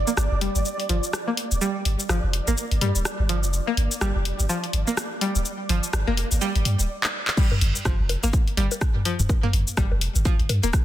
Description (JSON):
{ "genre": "minimal techno", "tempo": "125 BPM", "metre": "4/4", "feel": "swing 59% on 16ths", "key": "G minor", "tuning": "A4 = 441 Hz", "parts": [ { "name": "punchy sub bass", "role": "bass", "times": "0.0-10.7 s", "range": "D1 to G2", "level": "-23 LUFS", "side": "equal", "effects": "sidechain pumping" }, { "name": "flickering grainy texture", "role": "texture", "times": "0.0-6.9 s", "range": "D5", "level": "-34 LUFS", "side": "right 4 dB", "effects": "built-in reverb, sidechain pumping" }, { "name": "string-like resonator pluck", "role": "riff", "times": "0.1-10.7 s", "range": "F3 to Bb3", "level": "-28 LUFS", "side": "equal", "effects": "chorus, sidechain pumping, digital delay" }, { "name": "house drum kit", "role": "drums", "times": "0.1-10.8 s", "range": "crash cymbal, handclaps, hi-hat, rim click, shaker", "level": "-28 LUFS", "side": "left 1 dB", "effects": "soft clipping on snare" }, { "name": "electronic kick drum", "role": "drums", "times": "7.4-10.8 s", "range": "none", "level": "-21 LUFS", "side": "equal", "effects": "none" }, { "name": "electronic toms and bongos", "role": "percussion", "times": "7.5-10.6 s", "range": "none", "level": "-27 LUFS", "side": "left 2 dB", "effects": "digital delay" } ], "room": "light reverb, digital ambience", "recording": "dense, heavily limited modern master", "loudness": "-21 LUFS", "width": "side -13 dB against mid", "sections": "0.0-7.4 A section; 7.4-10.8 B section", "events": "build-up 0.0-7.4; filter sweep on synth pluck 0.0-7.4; stop 6.9-7.4; drum fill 7.0-7.4; drop 7.4-10.8", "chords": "0.0 G5", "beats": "0.17 0.65 1.13 | 1.61 2.09 2.57 3.05 | 3.53 4.01 4.49 4.97 | 5.45 5.93 6.41 6.89 | 7.37 7.85 8.33 8.81 | 9.29 9.77 10.25 10.73" }